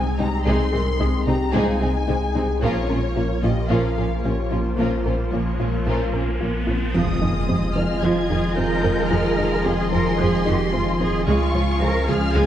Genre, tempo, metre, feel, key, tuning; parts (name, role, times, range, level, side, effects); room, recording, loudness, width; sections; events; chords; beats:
cinematic, hybrid orchestral and electronic film score; 111 BPM; 4/4; straight; F minor; A4 = 437 Hz
warm symphonic violin section; melody; 0.0-12.5 s; C5 to Ab6; -30 LUFS; left 4 dB
hollow soft pad; sustained chords; 0.0-12.5 s; F3 to Eb5; -28 LUFS; left 1 dB; ensemble chorus
warm French horn section; sustained chords; 0.0-12.5 s; Ab3 to Bb4; -31 LUFS; left 3 dB
soft round pluck; arpeggios; 0.0-12.5 s; Db3 to Bb4; -30 LUFS; left 2 dB
warm sub bass; bass; 0.0-12.5 s; F1 to Db2; -26 LUFS; equal
warm symphonic violin section; second line; 0.2-12.5 s; Ab3 to F5; -30 LUFS; left 3 dB
clear symphonic viola section; accompaniment; 0.2-12.5 s; C3 to F4; -28 LUFS; right 2 dB
rich symphonic double bass section; bass; 0.2-12.4 s; Bb1 to F2; -26 LUFS; right 2 dB
warm symphonic cello section; bass; 0.2-12.5 s; Bb2 to Bb4; -28 LUFS; right 2 dB
warm grand piano; texture; 1.0-12.5 s; C5 to Eb6; -37 LUFS; left 2 dB
riser and impact; sound effects; 4.7-9.1 s; -31 LUFS; equal
warm trombone section; sustained chords; 6.9-12.5 s; Db3 to F3; -28 LUFS; right 2 dB
moderate scoring stage reverb, RT60 1.7 s; dark, warm production, lossy compression artefacts; -19 LUFS; side -11 dB against mid
0.0-6.9 A section; 6.9-12.5 A section
riser 4.7-6.9; impact 6.9-9.1
0.0 Ab/C; 2.6 Bbm; 6.9 Fm7; 11.3 Db
| 0.46 1.00 1.54 2.08 | 2.62 3.16 3.70 4.24 | 4.78 5.32 5.86 6.41 | 6.95 7.49 8.03 8.57 | 9.11 9.65 10.19 10.73 | 11.27 11.81 12.35